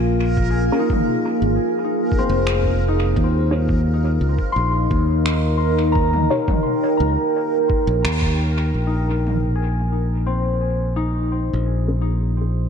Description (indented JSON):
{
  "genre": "ambient dub",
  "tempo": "86 BPM",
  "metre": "4/4",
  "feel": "straight",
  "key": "unclear",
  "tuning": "A4 = 440 Hz",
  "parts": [
    { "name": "deep dark ambient pad", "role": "sustained chords", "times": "0.0-12.7 s", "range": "Bb3 to G5", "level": "-22 LUFS", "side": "right 1 dB", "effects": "chorus, built-in reverb" },
    { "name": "concert harp", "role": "arpeggios", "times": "0.0-12.7 s", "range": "C4 to C6", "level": "-26 LUFS", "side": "left 4 dB", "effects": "low-pass filter, ping-pong delay" },
    { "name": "modern bright fingered electric bass", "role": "bass", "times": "0.0-12.7 s", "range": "F1 to Eb2", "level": "-19 LUFS", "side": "equal", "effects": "none" },
    { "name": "backwards swelling texture", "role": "texture", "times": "0.0-8.8 s", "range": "Bb4", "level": "-32 LUFS", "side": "equal", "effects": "built-in reverb" },
    { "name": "electronic kick drum", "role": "drums", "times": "0.4-8.4 s", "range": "none", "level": "-22 LUFS", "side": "equal", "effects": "none" },
    { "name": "filtered dub chord stab", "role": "stabs", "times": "0.7-12.0 s", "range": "Db4 to Db5", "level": "-28 LUFS", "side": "left 2 dB", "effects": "phaser, vintage 12-bit sampler grit, dub echo" },
    { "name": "organic electronic drum kit", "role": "drums", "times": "0.9-9.4 s", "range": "finger snaps, toms", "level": "-29 LUFS", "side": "right 1 dB", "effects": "dub echo" }
  ],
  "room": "moderate lush hall reverb, RT60 2.7 s",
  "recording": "dreamy mix soaked in reverb",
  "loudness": "-17 LUFS",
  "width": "side -7 dB against mid",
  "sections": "0.0-8.7 A section; 8.7-12.7 B section",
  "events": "band accent 8.0-8.4",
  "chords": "0.0 Bb7(no3); 3.2 Eb7; 8.7 Bbm7",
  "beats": "| 0.37 1.07 1.77 2.47 | 3.17 3.86 4.56 5.26 | 5.96 6.65 7.35 8.05 | 8.75 9.44 10.14 10.84 | 11.54 12.23"
}